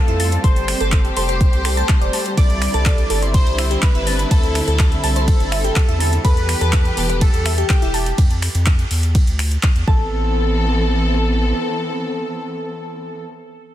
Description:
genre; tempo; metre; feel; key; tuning
progressive house; 124 BPM; 4/4; straight; A minor; A4 = 439 Hz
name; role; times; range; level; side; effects
soft supersaw; melody; 0.0-13.2 s; G4 to D5; -25 LUFS; equal; dub echo
soft round pluck; second line; 0.0-13.2 s; G5 to D6; -32 LUFS; left 1 dB; chorus, sidechain pumping, ping-pong delay
dark studio string section; sustained chords; 0.0-13.2 s; D3 to A4; -25 LUFS; equal; vintage 12-bit sampler grit, sidechain pumping
glassy wavetable pluck; arpeggios; 0.1-10.3 s; E4 to A6; -26 LUFS; equal; chorus, sidechain pumping, ping-pong delay
round analog bass; bass; 0.1-11.5 s; E1 to F2; -20 LUFS; equal; sidechain pumping
deep house drum kit; drums; 0.1-9.9 s; finger snaps, handclaps, hi-hat, ride cymbal; -25 LUFS; equal; small room ambience
electronic kick drum; drums; 0.4-10.0 s; none; -15 LUFS; equal; small room ambience
room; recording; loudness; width
little or no reverb; dense, heavily limited modern master; -15 LUFS; side -13 dB against mid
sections
0.0-10.1 A section; 10.1-13.7 B section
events
drop 0.0-10.1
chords
0.0 Fadd9; 2.4 Cadd9; 6.2 Em; 9.9 Amadd9

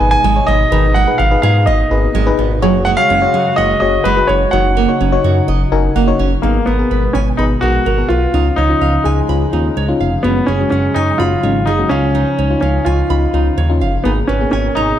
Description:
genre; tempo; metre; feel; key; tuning
synth-pop; 126 BPM; 4/4; straight; G# dorian; A4 = 440 Hz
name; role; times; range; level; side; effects
warm concert grand piano; melody; 0.0-15.0 s; G#3 to G#5; -16 LUFS; equal; tape echo
FM electric piano with auto-pan; accompaniment; 0.0-14.8 s; G#3 to G#5; -20 LUFS; left 5 dB; none
chorused pulse-width pad; sustained chords; 0.0-15.0 s; A#2 to A#4; -22 LUFS; equal; none
smooth synth bass; bass; 0.0-14.9 s; E#1 to G#2; -16 LUFS; equal; none
nylon-string guitar; arpeggios; 0.2-14.9 s; D#3 to B5; -22 LUFS; right 8 dB; tape echo
room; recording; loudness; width
moderate concert hall reverb, RT60 1.7 s, small room ambience; dark, warm production; -11 LUFS; side -10 dB against mid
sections
0.0-6.4 A section; 6.4-15.0 B section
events
FM electric piano fill 5.5-6.4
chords
0.0 G#m; 2.6 F#sus2; 4.5 D#m7/F#; 6.4 G#madd9; 8.3 C#add9; 10.2 F#sus2; 11.9 C#add9; 14.1 G#madd9

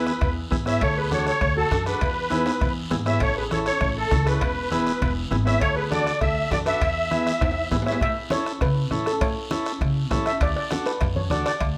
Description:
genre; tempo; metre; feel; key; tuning
latin, cumbia; 200 BPM; 4/4; straight; A major; A4 = 441 Hz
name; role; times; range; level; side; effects
musette accordion; melody; 0.0-8.0 s; A4 to E5; -27 LUFS; equal; slapback echo
steel pan; second line; 0.0-11.8 s; E4 to E5; -32 LUFS; equal; none
combo organ; accompaniment; 0.0-11.5 s; B3 to A4; -31 LUFS; equal; spring reverb
upright bass; bass; 0.0-11.7 s; E1 to C#3; -30 LUFS; equal; none
bombo; percussion; 0.1-11.8 s; none; -31 LUFS; equal; none
guiro; percussion; 0.1-11.8 s; none; -40 LUFS; equal; none
congas; percussion; 0.2-11.8 s; none; -35 LUFS; equal; none
cowbell and timbales; percussion; 0.2-11.8 s; none; -36 LUFS; equal; none
room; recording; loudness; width
light reverb; close, detailed microphones; -23 LUFS; mono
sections
0.0-8.0 A section; 8.0-11.8 B section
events
drum fill 2.3-3.2, 7.4-8.0; steel pan solo 8.0-11.8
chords
0.0 E; 0.8 D; 2.0 E; 3.2 A; 4.4 E; 5.6 D; 6.8 E; 8.0 A; 10.4 D

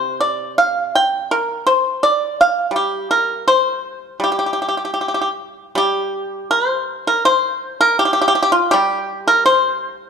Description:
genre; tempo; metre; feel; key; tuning
chinese traditional, Chinese solo plucked strings; 81 BPM; 2/4; rubato; G yu mode; A4 = 441 Hz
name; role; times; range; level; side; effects
pipa; solo; 0.0-10.1 s; C3 to G5; -15 LUFS; equal; none
room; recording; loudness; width
moderate recital hall reverb, RT60 1.6 s; dark, warm production; -15 LUFS; side -6 dB against mid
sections
0.0-5.8 A section; 5.8-10.1 B section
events
none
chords
none

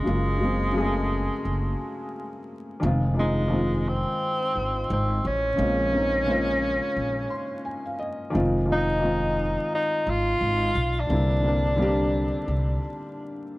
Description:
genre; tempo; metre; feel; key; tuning
lo-fi hip hop; 87 BPM; 4/4; swing 59% on 16ths; unclear; A4 = 440 Hz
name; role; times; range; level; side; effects
warm tenor saxophone; melody; 0.0-13.5 s; Ab3 to F4; -27 LUFS; equal; low-pass filter
felt-muted upright piano; accompaniment; 0.0-13.6 s; Db3 to C6; -27 LUFS; left 1 dB; cassette tape, low-pass filter
upright bass; bass; 0.1-12.8 s; F1 to C2; -26 LUFS; equal; none
room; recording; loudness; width
moderate spring reverb, RT60 1.6 s, studio reverb; vinyl crackle; -22 LUFS; side -19 dB against mid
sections
0.0-13.6 A section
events
felt piano fill 7.0-8.3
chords
0.1 Gbmaj7; 2.8 Fm7; 5.6 Bbm9; 8.3 Fm7; 11.1 C7

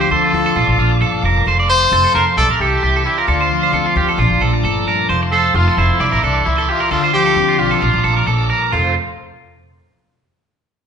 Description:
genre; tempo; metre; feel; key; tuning
highlife; 132 BPM; 4/4; straight; F major; A4 = 440 Hz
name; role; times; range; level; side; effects
clear trumpet; melody; 0.0-8.3 s; D4 to C5; -17 LUFS; left 1 dB; none
picked plugged-in steel-string acoustic guitar; accompaniment; 0.0-8.9 s; F2 to A4; -23 LUFS; left 6 dB; none
bright tonewheel organ; sustained chords; 0.0-8.9 s; A4 to D6; -25 LUFS; equal; slow rotary speaker
electric guitar at the edge of break-up; arpeggios; 0.0-8.9 s; F4 to D5; -18 LUFS; right 4 dB; none
upright bass; bass; 0.0-8.9 s; F1 to D2; -19 LUFS; equal; none
room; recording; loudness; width
wet large studio reverb, RT60 1.4 s; band playing live in one room, nothing above 10.7 kHz; -12 LUFS; side -7 dB against mid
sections
0.0-8.7 A section; 8.7-10.5 B section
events
none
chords
0.0 Dm7; 0.6 Bbmaj7; 1.5 F; 2.4 Cadd9; 3.3 Dm7; 4.2 Bbmaj7; 5.1 F; 6.0 Cadd9; 6.9 Dm7; 7.8 Bbmaj7; 8.7 F

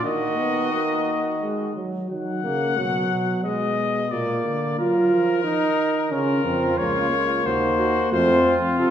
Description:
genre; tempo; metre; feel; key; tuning
classical, imitative canzona for brass ensemble; 89 BPM; 3/4; straight; Eb minor; A4 = 440 Hz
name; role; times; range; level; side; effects
clear cornet; melody; 0.0-8.9 s; A4 to Gb5; -24 LUFS; left 4 dB; none
warm trumpet; second line; 0.0-1.7, 6.1-8.9 s; F4 to Gb4; -27 LUFS; right 2 dB; none
mellow trombone; accompaniment; 0.0-8.9 s; Gb3 to F4; -24 LUFS; right 2 dB; none
mellow bass trombone; bass; 0.0-8.9 s; Db2 to Gb3; -26 LUFS; right 1 dB; none
room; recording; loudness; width
wet recital hall reverb, RT60 1.4 s; heard from further back in the room; -20 LUFS; side -9 dB against mid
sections
0.0-2.1 A section; 2.1-8.9 B section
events
none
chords
0.1 Ebm; 3.4 B6; 4.1 Bb; 5.5 Eb5; 6.1 Bbm; 7.5 Cdim/Eb; 8.1 F

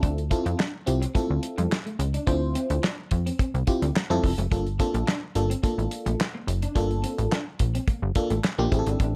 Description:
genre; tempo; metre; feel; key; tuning
early-eighties boogie funk; 107 BPM; 4/4; straight; unclear; A4 = 440 Hz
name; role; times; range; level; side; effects
FM electric piano; accompaniment; 0.0-9.2 s; Bb3 to C5; -30 LUFS; equal; chorus
clean electric guitar; riff; 0.0-9.1 s; G3 to D4; -37 LUFS; equal; analog chorus
plucky analog bass; bass; 0.0-9.2 s; F1 to F2; -28 LUFS; equal; none
damped 70s drum kit; drums; 0.0-9.1 s; handclaps, hi-hat, kick drum, snare drum; -29 LUFS; equal; none
room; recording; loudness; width
small room ambience; none; -26 LUFS; mono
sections
0.0-9.2 A section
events
none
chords
0.0 Dm7; 4.5 Gm7

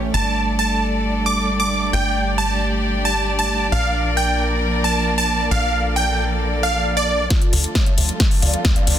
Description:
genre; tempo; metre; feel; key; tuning
uplifting trance; 134 BPM; 4/4; straight; D minor; A4 = 441 Hz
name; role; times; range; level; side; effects
warm chamber string section; sustained chords; 0.0-9.0 s; D3 to D5; -23 LUFS; right 1 dB; sidechain pumping
tight sequencer bass; bass; 0.0-9.0 s; G1 to D2; -23 LUFS; equal; sidechain pumping
supersaw stab; melody; 0.1-9.0 s; F4 to D6; -21 LUFS; right 1 dB; sidechain pumping, low-pass filter, dub echo
big-room dance drum kit; drums; 7.3-9.0 s; hi-hat, snare drum; -21 LUFS; left 2 dB; none
electronic kick drum; drums; 7.3-8.7 s; none; -17 LUFS; equal; none
riser; sound effects; 7.9-9.0 s; none; -36 LUFS; equal; none
room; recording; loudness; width
light reverb, digital ambience; dense, heavily limited modern master; -16 LUFS; side -10 dB against mid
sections
0.0-7.3 A section; 7.3-9.0 B section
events
build-up 7.3-9.0; drum fill 7.3-9.0; filter sweep on supersaw synth 7.3-9.0; riser 7.9-9.0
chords
0.1 Gsus2; 3.7 Bb; 7.3 Dm

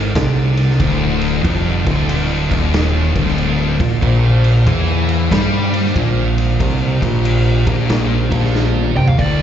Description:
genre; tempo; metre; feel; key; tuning
stoner and doom metal; 93 BPM; 4/4; swing 65% on 8ths; unclear; A4 = 440 Hz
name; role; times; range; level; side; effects
tonewheel organ; sustained chords; 0.0-9.4 s; D3 to F5; -27 LUFS; equal; overdrive, slow rotary speaker
thick fuzz guitar; riff; 0.0-9.4 s; D2 to G3; -19 LUFS; left 7 dB; distortion
thick fuzz guitar; riff; 0.0-9.4 s; D2 to G3; -19 LUFS; right 7 dB; distortion
growling fingered electric bass; bass; 0.0-9.4 s; D1 to G2; -19 LUFS; equal; overdrive
raw garage drum kit; drums; 0.2-9.4 s; hi-hat, kick drum, ride cymbal, snare drum, toms; -20 LUFS; equal; none
fuzz lead guitar; melody; 9.0-9.4 s; D5 to G5; -21 LUFS; right 1 dB; distortion, slapback echo
room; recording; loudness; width
small room ambience; live gig heard through the venue's PA, club reverb, nothing above 7.6 kHz; -13 LUFS; side -9 dB against mid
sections
0.0-9.2 A section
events
drum fill 8.5-9.2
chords
0.0 Dm; 4.0 Bb5

